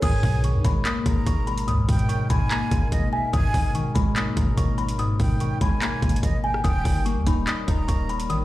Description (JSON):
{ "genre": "hip hop, trap", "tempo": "145 BPM", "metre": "4/4", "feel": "half-time", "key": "G# harmonic minor", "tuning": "A4 = 440 Hz", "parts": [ { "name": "kalimba", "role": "melody", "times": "0.0-8.4 s", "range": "G#5 to D#6", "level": "-30 LUFS", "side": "equal", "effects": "none" }, { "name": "breathy jazz flute", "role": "second line", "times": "0.0-8.3 s", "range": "D#5 to A#5", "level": "-33 LUFS", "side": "right 3 dB", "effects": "digital delay" }, { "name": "glassy wavetable pluck", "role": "accompaniment", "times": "0.0-8.4 s", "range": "G#2 to D#5", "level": "-27 LUFS", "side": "left 1 dB", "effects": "chorus" }, { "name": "dark analog pad", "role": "sustained chords", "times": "0.0-8.4 s", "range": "B2 to A#4", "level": "-32 LUFS", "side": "left 1 dB", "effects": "chorus" }, { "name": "warm 808-style bass", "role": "bass", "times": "0.0-8.4 s", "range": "D#1 to G#2", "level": "-25 LUFS", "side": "equal", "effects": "none" }, { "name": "trap drum kit", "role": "drums", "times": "0.0-8.4 s", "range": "crash cymbal, handclaps, hi-hat, kick drum, rim click", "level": "-25 LUFS", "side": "equal", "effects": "none" } ], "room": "digital ambience", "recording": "played on a big sound system in a bare room, large studio reverb", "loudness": "-20 LUFS", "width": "side -16 dB against mid", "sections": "0.0-8.4 A section", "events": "none", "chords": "0.0 G#madd9; 6.6 D#" }